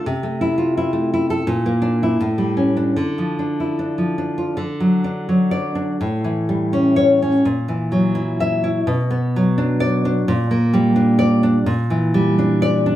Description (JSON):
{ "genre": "romantic piece for solo classical guitar", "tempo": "74-87 BPM", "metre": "2/4", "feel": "rubato", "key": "D minor, D major from 4.6 s", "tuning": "A4 = 441 Hz", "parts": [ { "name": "nylon-string guitar", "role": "solo", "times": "0.0-13.0 s", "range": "A2 to E5", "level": "-16 LUFS", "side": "equal", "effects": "none" } ], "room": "wet studio reverb, RT60 0.7 s", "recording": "band playing live in one room", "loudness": "-16 LUFS", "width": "side -13 dB against mid", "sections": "0.0-4.6 A section; 4.6-13.0 B section", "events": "none", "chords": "0.0 Am/C; 1.5 Bb; 2.2 A7; 3.0 Dm; 4.6 D; 6.0 A7; 7.5 F#7/A#; 8.9 Bm; 10.3 Gm/Bb; 11.7 Em7b5/Bb" }